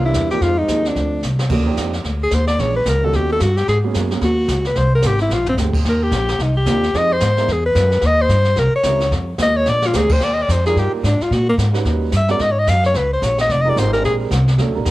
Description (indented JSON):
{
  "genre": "jazz, small-group swing and bop",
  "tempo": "220 BPM",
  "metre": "4/4",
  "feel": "swing 60% on 8ths",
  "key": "Eb major",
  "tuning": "A4 = 439 Hz",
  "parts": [
    { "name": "clear alto saxophone", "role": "melody", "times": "0.0-14.1 s", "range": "Bb3 to F5", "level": "-18 LUFS", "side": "left 1 dB", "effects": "none" },
    { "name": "mellow trombone", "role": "second line", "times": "0.0-1.2 s", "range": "F2 to Bb2", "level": "-26 LUFS", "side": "right 6 dB", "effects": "cassette tape" },
    { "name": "dark concert grand piano", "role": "accompaniment", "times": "0.0-14.9 s", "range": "D3 to Cb5", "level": "-25 LUFS", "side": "right 7 dB", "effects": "cassette tape" },
    { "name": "upright bass", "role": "bass", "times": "0.0-14.9 s", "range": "F1 to Bb2", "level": "-18 LUFS", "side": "equal", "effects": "tube saturation" },
    { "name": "jazz brush drum kit", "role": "drums", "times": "0.1-14.9 s", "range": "brushed snare drum, crash cymbal, hi-hat, kick drum, snare drum, toms", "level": "-25 LUFS", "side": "equal", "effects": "cassette tape" }
  ],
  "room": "light reverb, small room ambience",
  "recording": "home recording on cassette",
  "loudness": "-14 LUFS",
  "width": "side -17 dB against mid",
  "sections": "0.0-1.5 A section; 1.5-10.2 B section; 10.2-14.9 B section",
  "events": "drum fill 1.2, 5.3, 9.7; alto saxophone solo 1.5-14.9",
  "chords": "0.4 Fm7; 1.0 Csus24; 1.5 Ebmaj9; 2.6 Bbm7b5; 3.1 Eb7alt; 3.7 Abm11; 4.8 Abmaj7; 5.3 Bb13; 5.9 Eb; 6.4 Cm11; 6.9 Fm7; 7.5 E5; 8.0 Eb; 8.6 C7b9; 9.1 Dbadd9 (rootless); 9.7 Bb13; 10.2 Ebmaj9; 11.3 Abm11; 11.9 Eb7alt; 12.4 Ab9sus4; 13.5 Fm11; 14.0 Bb13"
}